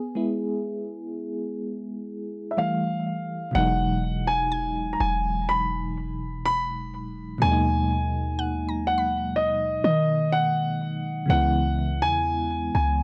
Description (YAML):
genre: contemporary R&B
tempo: 62 BPM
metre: 4/4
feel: straight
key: unclear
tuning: A4 = 441 Hz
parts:
  - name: FM electric piano with tremolo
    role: accompaniment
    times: 0.0-13.0 s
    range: B2 to G#4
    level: -31 LUFS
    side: equal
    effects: none
  - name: dark grand piano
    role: melody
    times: 2.5-13.0 s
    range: D#5 to B5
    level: -28 LUFS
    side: equal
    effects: none
  - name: clean 808-style bass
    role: bass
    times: 3.6-13.0 s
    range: E1 to D#3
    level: -30 LUFS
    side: equal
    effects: transformer saturation
  - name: mallet-like synth pluck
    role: texture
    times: 4.5-11.0 s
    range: F#5 to B5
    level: -39 LUFS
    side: equal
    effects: chorus, tape echo
room: little or no reverb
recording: dry, gritty hardware recording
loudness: -25 LUFS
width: mono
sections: 0.0-3.5 A section; 3.5-13.0 B section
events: FM electric piano solo 0.0-3.5; stop 0.0-3.5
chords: 0.0 E/G#; 2.6 Fmaj9; 3.5 Emaj9; 7.4 G#m9/D#; 11.3 C#m7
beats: 0.65 1.61 2.58 | 3.55 4.52 5.49 6.45 | 7.42 8.39 9.36 10.32 | 11.29 12.26